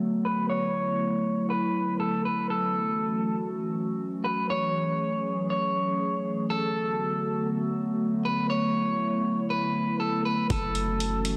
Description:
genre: hip hop, atmospheric cloud-rap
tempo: 120 BPM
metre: 4/4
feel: half-time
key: F# minor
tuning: A4 = 441 Hz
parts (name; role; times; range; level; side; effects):
- warbly tape-like pad; sustained chords; 0.0-11.4 s; D3 to G#4; -30 LUFS; equal; chorus, built-in reverb, tremolo, sidechain pumping, low-pass filter
- electric guitar at the edge of break-up; melody; 0.2-11.4 s; A4 to C#5; -31 LUFS; equal; spring reverb, low-pass filter, tape echo
- warm 808-style bass; bass; 10.5-11.4 s; F#1; -33 LUFS; equal; none
- trip hop sampler-style drum kit; drums; 10.5-11.4 s; hi-hat, kick drum; -34 LUFS; equal; none
room: moderate lush hall reverb, RT60 1.8 s, digital ambience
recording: dense, heavily limited modern master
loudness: -28 LUFS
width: mono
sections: 0.0-10.5 A section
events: filter sweep 0.0-10.5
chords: 0.0 Bm7; 2.5 F#m7; 6.5 Bm7; 10.5 F#m7

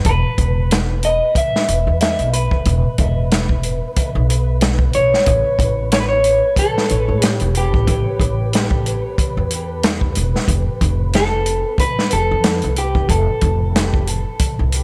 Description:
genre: trip hop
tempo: 92 BPM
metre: 4/4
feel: swing 56% on 16ths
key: unclear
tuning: A4 = 441 Hz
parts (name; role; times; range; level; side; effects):
- upright bass; bass; 0.0-14.8 s; E1 to A2; -21 LUFS; equal; none
- vintage drum kit; drums; 0.0-14.8 s; hi-hat, kick drum, snare drum; -21 LUFS; equal; none
- flickering grainy texture; texture; 0.0-14.8 s; B4; -32 LUFS; equal; built-in reverb
- electric guitar at the edge of break-up; melody; 0.1-14.0 s; G4 to E5; -22 LUFS; equal; vintage 12-bit sampler grit, tape echo
room: light reverb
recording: echo-heavy mix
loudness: -17 LUFS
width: mono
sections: 0.0-14.8 A section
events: none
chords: 0.1 E5; 5.3 A; 10.5 F

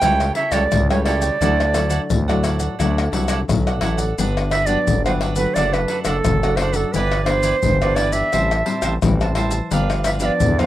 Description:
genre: samba and choro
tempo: 87 BPM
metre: 4/4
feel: straight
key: unclear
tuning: A4 = 440 Hz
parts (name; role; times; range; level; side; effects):
- bright reedy wooden flute; melody; 0.0-10.7 s; A4 to G5; -20 LUFS; right 3 dB; none
- cavaquinho; accompaniment; 0.0-10.7 s; D4 to A5; -26 LUFS; right 5 dB; none
- nylon-string guitar; accompaniment; 0.0-10.7 s; F#2 to E4; -24 LUFS; left 3 dB; none
- growling FM bass; bass; 0.0-10.7 s; F#1 to E2; -22 LUFS; equal; none
- maracas, surdo, pandeiro and tamborim; percussion; 0.0-10.7 s; none; -22 LUFS; left 4 dB; none
room: light reverb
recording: rough home demo mix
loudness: -16 LUFS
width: side -14 dB against mid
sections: 0.0-10.7 A section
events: none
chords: 0.0 A7/C#; 1.4 Dadd9; 4.2 Gmaj7; 5.6 D/F#; 6.9 Em7/G; 8.3 Am7; 9.7 G7

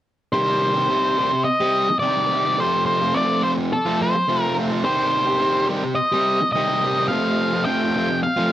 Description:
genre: rock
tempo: 106 BPM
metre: 4/4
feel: straight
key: C dorian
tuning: A4 = 440 Hz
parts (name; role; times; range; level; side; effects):
- octave-fuzz lead guitar; melody; 0.3-8.5 s; A4 to G5; -20 LUFS; equal; distortion, plate reverb, analog delay
- fuzz guitar; riff; 0.3-8.5 s; F2 to G4; -21 LUFS; equal; distortion
room: wet small room reverb, RT60 0.6 s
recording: worn, warbling old tape, cassette tape, warbly pitch drift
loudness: -18 LUFS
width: side -13 dB against mid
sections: 0.3-8.5 A section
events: none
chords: 0.3 Cm; 2.6 F; 4.8 Cm; 7.1 F

